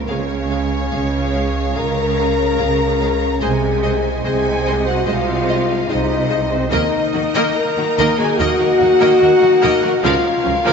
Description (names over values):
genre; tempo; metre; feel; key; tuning
cinematic; 73 BPM; 4/4; straight; Eb dorian; A4 = 438 Hz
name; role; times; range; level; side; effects
rich symphonic violin section; second line; 0.0-10.7 s; C5 to Bb5; -26 LUFS; left 2 dB; none
mellow French horn section; sustained chords; 0.0-10.7 s; C4 to Bb4; -17 LUFS; left 3 dB; none
rich symphonic string section; sustained chords; 0.0-10.7 s; Ab3 to F5; -25 LUFS; equal; none
clear studio violin section; melody; 0.1-10.7 s; Gb4 to F5; -26 LUFS; left 3 dB; none
bright symphonic viola section; accompaniment; 0.1-10.7 s; F3 to C5; -24 LUFS; right 1 dB; none
clear symphonic double bass section; bass; 0.1-10.5 s; C2 to Eb2; -23 LUFS; right 4 dB; none
rich symphonic cello section; bass; 0.1-10.7 s; C3 to Eb3; -24 LUFS; right 4 dB; none
room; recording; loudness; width
wet concert hall reverb, RT60 2.5 s; nothing above 7.7 kHz; -14 LUFS; side -6 dB against mid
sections
0.0-10.7 A section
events
none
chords
0.1 Db; 3.4 Ab/C; 6.7 Ebm; 10.0 Bbm/Db